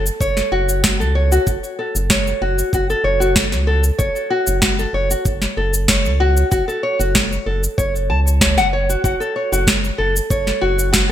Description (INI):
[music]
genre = organic downtempo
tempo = 95 BPM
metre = 4/4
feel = straight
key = F# minor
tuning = A4 = 442 Hz
[part]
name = nylon-string guitar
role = arpeggios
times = 0.0-11.1 s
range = F#4 to A5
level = -19 LUFS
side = left 1 dB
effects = ping-pong delay
[part]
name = round analog bass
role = bass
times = 0.0-11.1 s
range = F#1 to C#2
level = -19 LUFS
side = equal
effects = none
[part]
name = electronic shaker and snare drum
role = drums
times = 0.1-11.1 s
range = none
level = -18 LUFS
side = equal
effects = gated reverb
[part]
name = electronic kick drum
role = drums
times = 0.2-11.1 s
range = none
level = -22 LUFS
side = equal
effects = none
[sound]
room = light reverb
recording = bright 1980s-style digital production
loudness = -15 LUFS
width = side -11 dB against mid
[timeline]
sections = 0.0-11.1 A section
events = none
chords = 0.0 F#m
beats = 0.20 0.83 | 1.47 2.10 2.73 3.36 | 3.99 4.62 5.25 5.89 | 6.52 7.15 7.78 8.41 | 9.04 9.68 10.31 10.94